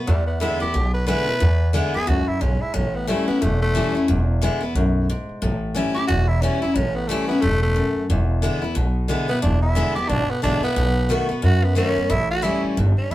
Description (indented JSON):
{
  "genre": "rockabilly",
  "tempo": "180 BPM",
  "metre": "4/4",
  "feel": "swing 61% on 8ths",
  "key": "unclear",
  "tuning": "A4 = 439 Hz",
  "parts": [
    { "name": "picked steel-string acoustic guitar", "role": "accompaniment", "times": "0.0-13.1 s", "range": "E2 to F#4", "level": "-23 LUFS", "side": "left 2 dB", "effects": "none" },
    { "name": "growling tenor saxophone", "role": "melody", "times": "0.1-13.1 s", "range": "G3 to B4", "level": "-24 LUFS", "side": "right 1 dB", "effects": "none" },
    { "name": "upright bass", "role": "bass", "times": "0.1-13.1 s", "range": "E1 to F#2", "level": "-21 LUFS", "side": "equal", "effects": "none" }
  ],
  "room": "moderate studio reverb, RT60 0.6 s",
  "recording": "band playing live in one room",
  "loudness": "-18 LUFS",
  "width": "side -15 dB against mid",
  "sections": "0.1-13.1 A section",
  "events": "tenor saxophone solo 0.1-13.1",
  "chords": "0.1 E7; 2.7 A7; 4.1 E7; 5.4 A7; 8.1 E7; 10.8 B7; 12.1 A7"
}